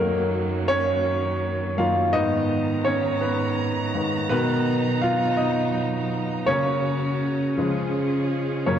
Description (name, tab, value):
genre	pop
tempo	55 BPM (dotted quarters)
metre	6/8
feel	straight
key	F# major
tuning	A4 = 440 Hz
part	clear baby grand piano	accompaniment	0.0-8.8 s	F#2 to E#5	-22 LUFS	left 1 dB	none
part	clear studio string section	sustained chords	0.0-8.8 s	F#2 to A#5	-26 LUFS	right 3 dB	none
room	wet concert hall reverb, RT60 1.9 s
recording	worn, warbling old tape, cassette tape, warbly pitch drift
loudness	-21 LUFS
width	side -9 dB against mid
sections	0.0-8.8 A section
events	grand piano solo 0.0-8.8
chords	0.0 F#6; 2.1 G#madd9; 4.3 Bmaj7; 6.5 F#/C#; 7.6 C#